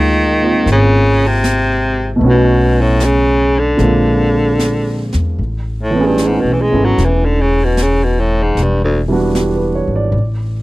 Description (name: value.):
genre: jazz ballad.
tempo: 76 BPM.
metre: 4/4.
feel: swing 68% on 8ths.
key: unclear.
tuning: A4 = 440 Hz.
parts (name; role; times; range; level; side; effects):
clear baritone saxophone; melody; 0.0-9.0 s; D2 to G#3; -14 LUFS; equal; none.
warm baby grand piano; accompaniment; 0.0-10.2 s; B2 to D5; -17 LUFS; right 2 dB; none.
upright bass; bass; 0.0-10.6 s; E1 to E2; -16 LUFS; equal; none.
jazz brush drum kit; drums; 0.7-10.6 s; brushed snare drum, hi-hat, snare drum; -26 LUFS; equal; none.
room: studio ambience.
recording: dry, close 1970s-style studio recording.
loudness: -11 LUFS.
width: side -19 dB against mid.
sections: 0.0-5.4 A section; 5.4-10.6 B section.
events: baritone saxophone solo 5.4-10.6.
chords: 0.0 C#6; 2.2 Bsus2; 3.8 Bb9; 5.4 Amaj9; 8.6 Em9.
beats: 0.67 1.44 | 2.22 3.00 3.79 4.59 | 5.39 6.18 6.98 7.77 | 8.55 9.34 10.13.